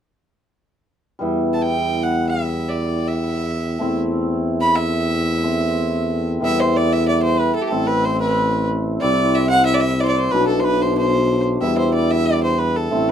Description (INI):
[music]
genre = klezmer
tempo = 92 BPM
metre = 2/4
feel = straight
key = E minor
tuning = A4 = 439 Hz
[part]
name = hammered dulcimer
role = accompaniment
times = 1.2-13.1 s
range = B2 to E4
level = -22 LUFS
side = left 1 dB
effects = none
[part]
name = warm tuba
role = bass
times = 1.2-13.1 s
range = A1 to E2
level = -21 LUFS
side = equal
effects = none
[part]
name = clear violin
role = melody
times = 1.5-13.1 s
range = G4 to B5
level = -21 LUFS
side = right 1 dB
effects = none
[sound]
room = moderate small room ambience, RT60 0.5 s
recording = dark, warm production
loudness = -16 LUFS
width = side -9 dB against mid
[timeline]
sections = 1.2-6.4 A section; 6.4-13.1 B section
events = none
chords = 1.2 Em; 3.8 Am/E; 6.4 Em; 7.7 Am; 9.0 C; 10.3 Bm; 11.6 Em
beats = | 1.21 1.86 | 2.51 3.17 | 3.82 4.47 | 5.12 5.77 | 6.42 7.07 | 7.72 8.37 | 9.02 9.67 | 10.32 10.97 | 11.62 12.27 | 12.93